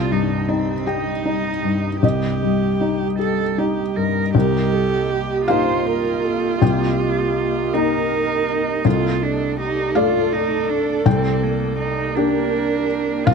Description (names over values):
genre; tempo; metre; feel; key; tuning
neoclassical piano and strings; 54 BPM (dotted quarters); 6/8; rubato; C dorian; A4 = 441 Hz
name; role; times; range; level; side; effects
dark cello; second line; 0.0-13.3 s; Bb3 to Bb4; -23 LUFS; right 6 dB; none
felt-muted upright piano; accompaniment; 0.0-13.3 s; C2 to A5; -20 LUFS; left 3 dB; none
glassy FM pad; sustained chords; 0.0-13.3 s; G3 to Eb5; -27 LUFS; right 3 dB; ensemble chorus, built-in reverb
dark viola; accompaniment; 4.3-13.3 s; G4 to C5; -24 LUFS; right 3 dB; none
room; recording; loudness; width
little or no reverb; close, detailed microphones; -17 LUFS; side -5 dB against mid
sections
0.0-4.3 A section; 4.3-13.3 B section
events
none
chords
0.0 Cm7; 8.8 Dm/C; 11.1 Gm/C